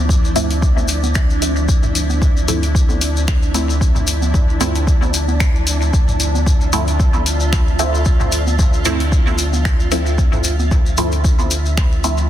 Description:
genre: dub techno.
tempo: 113 BPM.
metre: 4/4.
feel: swing 56% on 16ths.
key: D minor.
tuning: A4 = 438 Hz.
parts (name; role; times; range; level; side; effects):
granular cloud pad; sustained chords; 0.0-12.3 s; F3 to F4; -26 LUFS; right 1 dB; built-in reverb, sidechain pumping.
round analog bass; bass; 0.0-12.3 s; D2; -19 LUFS; equal; sidechain pumping.
wind-like tuned noise texture; texture; 0.0-12.3 s; D4 to E5; -28 LUFS; equal; built-in reverb, sidechain pumping.
electronic kick drum; drums; 0.1-11.9 s; none; -15 LUFS; equal; none.
electronic toms and congas; percussion; 0.1-11.5 s; none; -27 LUFS; right 2 dB; overdrive, sidechain pumping on toms, sidechain pumping on perc.
maracas; percussion; 0.1-12.3 s; none; -26 LUFS; left 4 dB; none.
filtered dub chord stab; stabs; 0.4-12.3 s; F3 to E4; -23 LUFS; right 1 dB; phaser, sidechain pumping, dub echo.
deep house drum kit; drums; 0.4-12.2 s; finger snaps, hi-hat; -25 LUFS; left 1 dB; soft clipping on snare, dub echo.
room: little or no reverb.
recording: dense, heavily limited modern master.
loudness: -14 LUFS.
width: side -12 dB against mid.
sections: 0.0-12.3 A section.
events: none.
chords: 0.0 Dm9.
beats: 0.09 0.62 1.16 | 1.69 2.22 2.75 3.28 | 3.81 4.34 4.87 5.40 | 5.93 6.46 7.00 7.53 | 8.06 8.59 9.12 9.65 | 10.18 10.71 11.24 11.78.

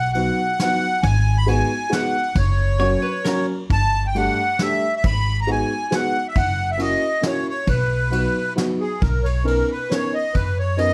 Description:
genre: musette waltz.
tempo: 135 BPM.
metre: 3/4.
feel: straight.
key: B major.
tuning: A4 = 441 Hz.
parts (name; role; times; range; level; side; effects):
accordion; melody; 0.0-10.9 s; G#4 to B5; -24 LUFS; equal; light tremolo tuning.
upright bass; bass; 0.0-10.9 s; F#1 to F#2; -23 LUFS; equal; none.
dark upright piano; accompaniment; 0.1-10.9 s; F#3 to A#4; -26 LUFS; equal; none.
soft brush drum kit; drums; 0.1-10.9 s; kick drum, ride cymbal, snare drum; -29 LUFS; equal; none.
archtop guitar, miked and amplified; second line; 2.8-3.6 s; A#4 to C#5; -28 LUFS; equal; none.
room: light reverb.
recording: none.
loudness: -20 LUFS.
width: mono.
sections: 0.0-9.0 A section; 9.0-10.9 B section.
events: none.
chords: 0.0 B; 1.0 G#m7; 2.4 F#; 3.7 Gsus2; 5.0 G#m7; 6.4 F#7; 7.7 B; 9.0 Bmaj9.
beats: 0.15 0.60 | 1.04 1.48 1.92 | 2.36 2.81 3.26 | 3.71 4.16 4.60 | 5.04 5.48 5.92 | 6.36 6.79 7.23 | 7.68 8.12 8.57 | 9.02 9.46 9.91 | 10.35 10.79.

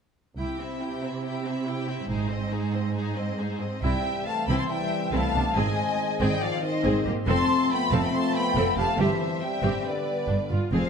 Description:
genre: cinematic.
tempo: 139 BPM.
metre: 4/4.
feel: straight.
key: C major.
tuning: A4 = 440 Hz.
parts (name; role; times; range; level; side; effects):
rich symphonic violin section; melody; 0.4-10.9 s; C5 to C6; -37 LUFS; left 2 dB; none.
rich studio violin section; second line; 0.4-10.9 s; E4 to A5; -34 LUFS; left 3 dB; none.
clear symphonic viola section; accompaniment; 0.4-10.9 s; Bb3 to A4; -32 LUFS; equal; none.
dark symphonic cello section; bass; 0.4-10.8 s; F2 to C3; -30 LUFS; right 3 dB; none.
warm symphonic double bass section; bass; 0.4-10.8 s; F1 to C2; -30 LUFS; right 2 dB; none.
large flute ensemble; second line; 3.8-10.9 s; D5 to C6; -29 LUFS; left 1 dB; none.
bright trombone section; sustained chords; 3.8-10.9 s; C3 to C4; -33 LUFS; right 2 dB; none.
warm French horn section; sustained chords; 3.8-10.9 s; D3 to C4; -30 LUFS; left 4 dB; none.
room: wet scoring stage reverb, RT60 2.0 s.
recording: dark, warm production.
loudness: -24 LUFS.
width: side -6 dB against mid.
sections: 0.4-3.8 A section; 3.8-10.9 B section.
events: none.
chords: 0.4 C; 2.1 Ab; 3.8 C; 5.6 Ab; 7.3 F; 9.0 C; 9.9 G/D.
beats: | 0.39 0.82 1.25 1.68 | 2.11 2.54 2.97 3.40 | 3.84 4.27 4.70 5.13 | 5.56 6.00 6.43 6.85 | 7.28 7.71 8.14 8.57 | 9.00 9.43 9.86 10.30 | 10.74.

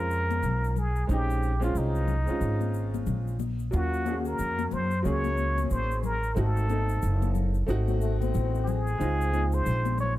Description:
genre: hip hop, jazz-hop.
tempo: 91 BPM.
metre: 4/4.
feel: swing 60% on 16ths.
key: unclear.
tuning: A4 = 440 Hz.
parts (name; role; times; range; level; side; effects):
trumpet with plunger mute; melody; 0.0-10.2 s; Eb4 to Db5; -32 LUFS; equal; none.
warm upright piano; accompaniment; 0.0-10.2 s; F3 to A4; -33 LUFS; right 1 dB; none.
upright bass; bass; 0.0-10.2 s; Gb1 to Gb2; -27 LUFS; equal; none.
egg shaker and congas; percussion; 0.1-10.2 s; none; -38 LUFS; left 14 dB; none.
growling trombone; second line; 7.9-9.0 s; Gb3 to C4; -36 LUFS; left 11 dB; tape echo.
room: small room ambience.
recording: dark, warm production.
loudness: -25 LUFS.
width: side -15 dB against mid.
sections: 0.0-3.7 A section; 3.7-10.2 B section.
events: none.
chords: 0.0 Bbm11; 3.7 Ebm9; 6.4 Ab7b9; 9.0 Dbmaj7.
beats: 0.43 | 1.09 1.75 2.41 3.07 | 3.73 4.39 5.05 5.71 | 6.37 7.03 7.69 8.35 | 9.01 9.66.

